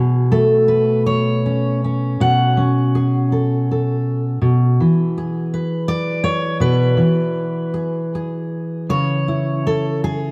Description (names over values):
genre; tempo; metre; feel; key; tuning
folk, solo fingerstyle acoustic guitar; 54 BPM (dotted quarters); 6/8; rubato; unclear; A4 = 441 Hz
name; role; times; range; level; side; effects
fingerpicked steel-string acoustic guitar; solo; 0.0-10.3 s; B2 to F#5; -18 LUFS; equal; none
room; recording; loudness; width
moderate plate reverb, RT60 3.3 s; heard from further back in the room; -18 LUFS; mono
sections
0.0-8.9 A section; 8.9-10.3 B section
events
none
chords
0.0 F#madd9/B; 4.4 E7/B; 8.9 C#m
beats
1.07 | 2.20 3.31 | 4.41 5.51 | 6.62 7.75 | 8.90 10.03